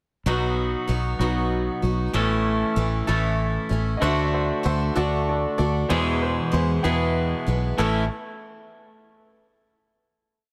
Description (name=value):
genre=folk rock and heartland rock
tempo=64 BPM (dotted quarters)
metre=6/8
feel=straight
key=A major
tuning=A4 = 438 Hz
part: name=picked steel-string acoustic guitar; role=accompaniment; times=0.3-8.0 s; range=E2 to F#4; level=-30 LUFS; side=equal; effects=none
part: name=twangy electric guitar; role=riff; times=0.3-8.0 s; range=E2 to A4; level=-29 LUFS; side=equal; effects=spring reverb
part: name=fingered electric bass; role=bass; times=0.3-8.1 s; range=A1 to E2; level=-27 LUFS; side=equal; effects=none
part: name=clear upright piano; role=second line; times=4.0-8.1 s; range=G#4 to G5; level=-31 LUFS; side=equal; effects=tape echo
room=light reverb, studio reverb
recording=none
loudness=-23 LUFS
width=mono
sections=0.3-7.8 verse; 7.8-9.7 final chord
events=none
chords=0.3 B; 2.1 A; 4.0 D; 5.9 E; 7.8 A